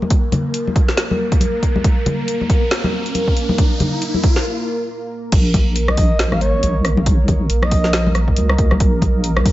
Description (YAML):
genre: deep dubstep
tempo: 138 BPM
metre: 4/4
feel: swing 58% on 16ths, half-time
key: Bb minor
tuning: A4 = 441 Hz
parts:
  - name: dark analog pad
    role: sustained chords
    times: 0.0-9.5 s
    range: Bb3 to Bb4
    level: -24 LUFS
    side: equal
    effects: chorus
  - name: congas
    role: percussion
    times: 0.0-9.4 s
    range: none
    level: -22 LUFS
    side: left 2 dB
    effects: none
  - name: riser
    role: sound effects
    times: 0.3-4.5 s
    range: none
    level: -26 LUFS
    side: equal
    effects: none
  - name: deep house drum kit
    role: drums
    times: 0.1-9.5 s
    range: crash cymbal, hi-hat, rim click, snare drum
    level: -22 LUFS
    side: equal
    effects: none
  - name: electronic kick drum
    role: drums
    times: 0.1-9.5 s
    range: none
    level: -16 LUFS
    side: equal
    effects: none
  - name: deep soft wobble bass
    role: bass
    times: 5.3-9.5 s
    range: Bb1 to Db2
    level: -17 LUFS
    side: equal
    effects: chorus
  - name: breathy flute-like synth lead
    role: melody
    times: 5.9-8.1 s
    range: Db5 to F5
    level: -24 LUFS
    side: equal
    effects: chorus, dub echo
room: light reverb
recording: nothing above 7.8 kHz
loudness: -14 LUFS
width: side -15 dB against mid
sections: 0.0-5.3 A section; 5.3-9.5 B section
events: build-up 0.0-5.3; riser 0.3-4.5; break 4.5-5.3; drop 5.3-9.5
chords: none